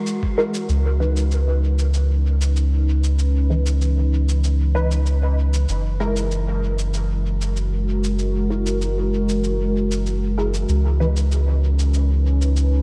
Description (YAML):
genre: ambient dub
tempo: 96 BPM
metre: 4/4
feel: straight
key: unclear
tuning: A4 = 440 Hz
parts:
  - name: warbly tape-like pad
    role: sustained chords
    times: 0.0-12.8 s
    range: E3 to B4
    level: -29 LUFS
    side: equal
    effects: chorus, built-in reverb
  - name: cabasa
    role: drums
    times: 0.1-12.7 s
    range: none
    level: -38 LUFS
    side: equal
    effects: dub echo
  - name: filtered dub chord stab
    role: stabs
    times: 0.4-11.2 s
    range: E3 to B4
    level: -30 LUFS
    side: equal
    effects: phaser, ensemble chorus, dub echo
  - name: soft dub sub bass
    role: bass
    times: 0.7-12.8 s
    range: F#1 to C#2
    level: -21 LUFS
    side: equal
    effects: none
room: light reverb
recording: none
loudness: -20 LUFS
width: mono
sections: 0.7-12.8 A section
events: filter sweep on ambient pad 0.7-12.8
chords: 0.0 F#9; 0.7 C#m9; 5.7 F#9; 10.7 C#m9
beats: 0.07 | 0.69 1.31 1.94 2.56 | 3.19 3.81 4.44 5.07 | 5.69 6.32 6.94 7.57 | 8.19 8.81 9.44 10.06 | 10.69 11.31 11.94 12.56